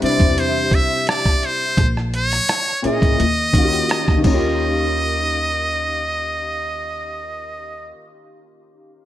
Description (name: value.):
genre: R&B, neo-soul.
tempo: 85 BPM.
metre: 4/4.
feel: swing 54% on 16ths.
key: unclear.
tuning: A4 = 438 Hz.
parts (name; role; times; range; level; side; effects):
trumpet with metal mute; melody; 0.0-7.9 s; C5 to E5; -21 LUFS; right 1 dB; none.
warm upright piano; accompaniment; 0.0-9.1 s; Bb2 to C5; -22 LUFS; left 2 dB; ensemble chorus.
upright bass; bass; 0.0-7.9 s; Ab1 to E2; -24 LUFS; equal; none.
dusty soul sampler-style drum kit; drums; 0.0-4.4 s; crash cymbal, hi-hat, kick drum, rim click; -19 LUFS; equal; gated reverb.
room: light reverb, small room ambience.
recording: bright 1980s-style digital production.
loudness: -16 LUFS.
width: side -12 dB against mid.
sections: 0.0-4.6 A section; 4.6-7.4 B section.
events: none.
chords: 0.0 Cmaj7; 1.8 Bbm7b5; 3.2 Eb7.